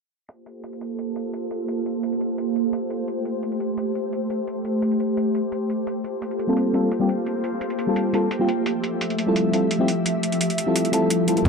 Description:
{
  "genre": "liquid drum and bass",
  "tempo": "172 BPM",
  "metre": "4/4",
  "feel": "straight",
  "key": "G dorian",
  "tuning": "A4 = 439 Hz",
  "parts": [
    { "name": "glassy FM pad", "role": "sustained chords", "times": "0.6-11.5 s", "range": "F3 to E5", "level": "-24 LUFS", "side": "equal", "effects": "ensemble chorus, built-in reverb" },
    { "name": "garage drum kit", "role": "drums", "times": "0.3-11.5 s", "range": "crash cymbal, hi-hat", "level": "-30 LUFS", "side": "right 1 dB", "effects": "overdrive, low-pass filter on hats, low-pass filter on cymbals" },
    { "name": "mellow FM electric piano", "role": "accompaniment", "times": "6.5-11.5 s", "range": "G3 to A4", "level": "-22 LUFS", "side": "left 1 dB", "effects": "chorus, phaser, tape echo" },
    { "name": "upright bass", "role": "bass", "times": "11.5 s", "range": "G1", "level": "-23 LUFS", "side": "equal", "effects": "none" },
    { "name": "electronic kick drum", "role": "drums", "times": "11.5 s", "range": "none", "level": "-16 LUFS", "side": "equal", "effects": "overdrive" }
  ],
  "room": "moderate plate reverb, RT60 1.4 s",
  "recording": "dark, warm production, low-pass filter",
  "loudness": "-21 LUFS",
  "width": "side -4 dB against mid",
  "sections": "0.3-11.5 A section",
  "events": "filter sweep on drum 0.3-11.5; filter sweep on ambient pad 0.3-11.5; filter sweep 0.3-11.5",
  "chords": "0.3 Gm11; 2.9 Am7; 5.9 Gm11; 8.5 Fmaj9"
}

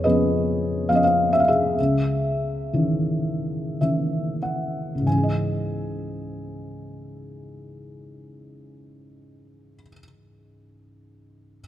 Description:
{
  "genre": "classical, lyrical solo piano",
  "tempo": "44-72 BPM",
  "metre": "3/4",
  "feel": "rubato",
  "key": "C# minor",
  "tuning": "A4 = 440 Hz",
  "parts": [
    { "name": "felt-muted upright piano", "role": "solo", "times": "0.0-11.6 s", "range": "C#2 to G#5", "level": "-21 LUFS", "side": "equal", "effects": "none" }
  ],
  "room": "moderate concert hall reverb, RT60 2.4 s",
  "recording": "none",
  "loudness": "-20 LUFS",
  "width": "side -12 dB against mid",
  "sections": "0.0-5.1 A section; 5.1-9.1 B section",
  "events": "slowing down 0.0-5.1; felt piano fill 3.2-5.1",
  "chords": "0.0 C#7/E#; 1.8 C#madd9"
}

